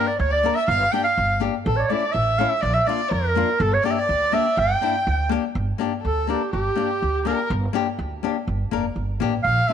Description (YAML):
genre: klezmer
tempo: 123 BPM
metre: 2/4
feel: straight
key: G dorian sharp4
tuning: A4 = 440 Hz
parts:
  - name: breathy clarinet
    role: melody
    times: 0.0-9.7 s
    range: G4 to G5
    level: -21 LUFS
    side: right 3 dB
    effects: none
  - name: rich violin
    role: second line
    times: 0.0-9.7 s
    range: G4 to G5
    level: -30 LUFS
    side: left 8 dB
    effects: none
  - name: nylon-string guitar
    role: accompaniment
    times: 0.0-9.7 s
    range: A3 to Bb4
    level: -26 LUFS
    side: left 10 dB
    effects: none
  - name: upright bass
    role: bass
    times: 0.2-9.6 s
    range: F1 to F2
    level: -25 LUFS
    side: right 2 dB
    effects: none
room: moderate echo chamber reverb, RT60 1.9 s, small room ambience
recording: 1960s-style stereo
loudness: -19 LUFS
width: side -8 dB against mid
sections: 0.0-5.5 A section; 5.5-9.7 B section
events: clarinet solo 5.5-9.7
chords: 0.0 Gm; 1.7 A; 2.6 Bb; 3.6 Gm